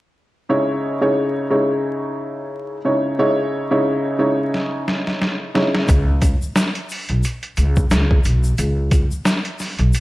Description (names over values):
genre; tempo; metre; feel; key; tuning
hip hop, boom-bap hip-hop; 89 BPM; 4/4; swing 57% on 16ths; C# minor; A4 = 442 Hz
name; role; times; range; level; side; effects
dark upright piano; accompaniment; 0.5-5.9 s; C#3 to C#5; -18 LUFS; equal; high-pass filter, low-pass filter
trip hop sampler-style drum kit; drums; 4.5-10.0 s; hi-hat, kick drum, snare drum; -19 LUFS; equal; overdrive
upright bass; bass; 5.9-9.9 s; B1 to C#2; -17 LUFS; equal; none
tube shaker; percussion; 5.9-10.0 s; none; -37 LUFS; left 4 dB; none
room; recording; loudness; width
light reverb, small room ambience; vinyl crackle; -17 LUFS; side -18 dB against mid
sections
0.5-5.9 A section; 5.9-10.0 B section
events
drum fill 4.5-5.9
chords
0.5 C#madd9; 5.9 C#5